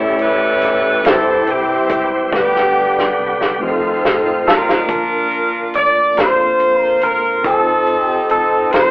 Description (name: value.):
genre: slow gospel.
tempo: 47 BPM (dotted quarters).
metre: 6/8.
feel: straight.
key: Bb major from 4.9 s.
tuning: A4 = 436 Hz.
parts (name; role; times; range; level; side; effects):
edgy saxophone section; melody; 0.0-8.9 s; G3 to D5; -16 LUFS; equal; none.
tine electric piano; accompaniment; 0.0-8.9 s; G2 to A5; -20 LUFS; equal; medium stereo tremolo.
bright tonewheel organ; sustained chords; 0.0-4.9 s; D3 to G4; -19 LUFS; equal; slow rotary speaker, overdrive.
fingered electric bass; bass; 0.0-8.9 s; E1 to F2; -37 LUFS; equal; none.
warm soul drum kit; drums; 0.2-8.9 s; hi-hat, kick drum, snare drum; -17 LUFS; equal; none.
clean electric guitar; melody; 4.5-8.9 s; A4 to D5; -17 LUFS; equal; none.
room: wet large studio reverb, RT60 0.9 s.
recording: band playing live in one room, telephone sound.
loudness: -12 LUFS.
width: side -23 dB against mid.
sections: 0.0-4.9 A section; 4.9-8.9 B section.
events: drum fill 2.3-4.9.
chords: 0.0 A7; 1.0 C/G; 2.3 G/D; 3.6 F7; 4.9 Bbmaj7; 7.4 F7.